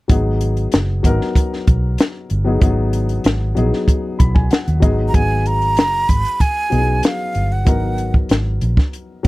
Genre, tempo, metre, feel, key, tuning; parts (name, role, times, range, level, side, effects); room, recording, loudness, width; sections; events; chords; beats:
lush 1970s-style soul; 95 BPM; 4/4; straight; G# minor; A4 = 442 Hz
dark baby grand piano; accompaniment; 0.1-9.3 s; F#3 to B5; -22 LUFS; left 3 dB
vintage muted fingered electric bass; bass; 0.1-9.3 s; F#1 to D#2; -18 LUFS; equal
compact cocktail drum kit; drums; 0.1-9.3 s; hi-hat, kick drum, snare drum; -15 LUFS; equal
breathy jazz flute; melody; 5.1-8.1 s; E#5 to B5; -19 LUFS; right 2 dB
little or no reverb; dry, close 1970s-style studio recording; -14 LUFS; side -20 dB against mid
0.1-5.1 A section; 5.1-9.3 B section
grand piano fill 3.9-5.1
0.1 G#m7
| 0.09 0.72 1.35 1.99 | 2.62 3.25 3.88 4.51 | 5.14 5.77 6.40 7.03 | 7.67 8.30 8.93